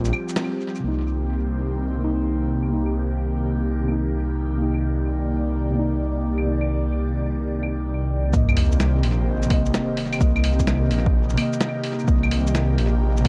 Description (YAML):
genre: future garage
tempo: 128 BPM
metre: 4/4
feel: swing 66% on 16ths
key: C minor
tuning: A4 = 440 Hz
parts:
  - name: muted felt-like synth keys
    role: accompaniment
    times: 0.0-13.3 s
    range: C3 to Eb5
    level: -29 LUFS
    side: equal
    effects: chorus, sidechain pumping, dub echo
  - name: airy breathy pad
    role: sustained chords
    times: 0.0-13.3 s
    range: Eb3 to D5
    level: -32 LUFS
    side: equal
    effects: chorus, phaser, sidechain pumping
  - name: swelling detuned saw bass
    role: bass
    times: 0.0-13.3 s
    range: Bb1 to C2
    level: -25 LUFS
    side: equal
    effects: tube saturation, sidechain pumping
  - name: lo-fi sampler-style drum kit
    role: drums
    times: 0.0-13.3 s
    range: claves, hi-hat, shaker, snare drum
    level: -31 LUFS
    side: equal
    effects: low-pass filter on perc, low-pass filter on snare, low-pass filter on hats, low-pass filter on room, tape echo
  - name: electronic kick drum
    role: drums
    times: 8.3-13.3 s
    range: none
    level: -24 LUFS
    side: equal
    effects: overdrive
  - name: sub drop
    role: sound effects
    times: 8.3-10.2 s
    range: none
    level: -30 LUFS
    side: equal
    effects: none
room: light reverb, digital ambience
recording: echo-heavy mix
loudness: -22 LUFS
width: mono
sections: 0.8-8.3 A section; 8.3-13.3 B section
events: band accent 0.4; impact 8.3-10.2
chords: 0.0 Fsus2; 0.8 Cm7